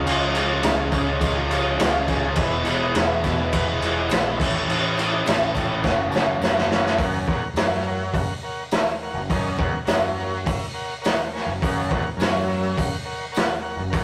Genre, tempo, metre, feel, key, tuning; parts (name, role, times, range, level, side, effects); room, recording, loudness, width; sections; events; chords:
garage rock duo or trio; 104 BPM; 4/4; straight; F# mixolydian; A4 = 443 Hz
overdriven combo organ; sustained chords; 0.0-14.0 s; G#4 to G#5; -33 LUFS; equal
overdriven electric guitar; riff; 0.0-14.0 s; E2 to F#4; -29 LUFS; equal
growling picked electric bass; bass; 0.0-14.0 s; E1 to F#2; -31 LUFS; equal; overdrive
raw garage drum kit; drums; 0.1-14.0 s; crash cymbal, hi-hat, kick drum, snare drum; -25 LUFS; equal
tambourine; percussion; 0.1-13.5 s; -46 LUFS; equal
light reverb; rough rehearsal-room recording, tube saturation; -22 LUFS; mono
0.0-7.0 A section; 7.0-14.0 B section
drum fill 5.8-7.0
0.0 C#; 2.4 E; 4.4 A; 5.8 F#